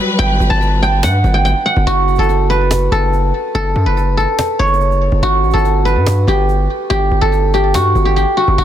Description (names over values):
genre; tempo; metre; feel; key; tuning
hip hop, trap; 143 BPM; 4/4; half-time; unclear; A4 = 440 Hz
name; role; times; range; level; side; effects
guzheng; melody; 0.0-8.6 s; F#4 to B5; -15 LUFS; equal; low-pass filter, digital delay
warm symphonic string section; sustained chords; 0.0-1.8 s; F#3 to B4; -20 LUFS; left 2 dB; none
distorted 808-style bass; bass; 0.2-8.6 s; F#1 to G2; -14 LUFS; equal; distortion
cajon; drums; 0.2-8.6 s; none; -24 LUFS; equal; none
room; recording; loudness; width
small room ambience; dense, heavily limited modern master; -12 LUFS; side -10 dB against mid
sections
0.0-1.9 A section; 1.9-8.6 B section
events
none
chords
0.0 Gmaj7; 1.9 F#m; 5.2 G